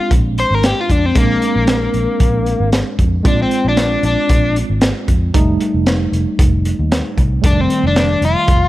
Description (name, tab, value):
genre	straight-eighth soul blues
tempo	115 BPM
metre	4/4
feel	swing 55% on 16ths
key	Bb mixolydian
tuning	A4 = 438 Hz
part	overdriven semi-hollow guitar	melody	0.0-8.7 s	Bb3 to C5	-17 LUFS	left 3 dB	harmonic tremolo, slapback echo
part	bright tine electric piano	accompaniment	0.0-8.7 s	Eb3 to F4	-20 LUFS	right 3 dB	medium stereo tremolo
part	vintage muted fingered electric bass	bass	0.1-8.7 s	F1 to F2	-18 LUFS	equal	none
part	crunchy breakbeat drum kit	drums	0.1-8.6 s	hi-hat, kick drum, snare drum	-16 LUFS	equal	none
room	small room ambience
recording	none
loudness	-12 LUFS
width	side -16 dB against mid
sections	0.0-8.7 A section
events	overdriven electric guitar solo 0.0-8.7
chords	0.0 Bb7; 5.3 F7